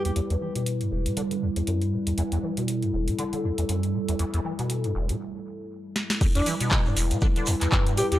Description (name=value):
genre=acid house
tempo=119 BPM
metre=4/4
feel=swing 57% on 16ths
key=E minor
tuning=A4 = 440 Hz
part: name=dark analog pad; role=sustained chords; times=0.0-8.2 s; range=G3 to B4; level=-30 LUFS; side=equal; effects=chorus, phaser, sidechain pumping
part: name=warm alto saxophone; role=melody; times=0.1, 6.4-8.2 s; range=D4 to G4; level=-29 LUFS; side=equal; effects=analog delay
part: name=deep acid bass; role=riff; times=0.1-8.2 s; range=E1 to E3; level=-27 LUFS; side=equal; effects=tube saturation, ensemble chorus
part: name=booming analog drum machine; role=drums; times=0.1-8.2 s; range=crash cymbal, handclaps, hi-hat, snare drum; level=-30 LUFS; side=equal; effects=none
part: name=electronic kick drum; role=drums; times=6.2-7.8 s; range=none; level=-23 LUFS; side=equal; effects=none
part: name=shekere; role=percussion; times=6.2-8.2 s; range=none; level=-36 LUFS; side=right 3 dB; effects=none
room=light reverb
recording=dry, gritty hardware recording, transformer saturation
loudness=-23 LUFS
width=side -14 dB against mid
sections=0.0-6.2 A section; 6.2-8.2 B section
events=break 5.2-6.2; drum fill 6.0; drop 6.2-8.2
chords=0.0 Em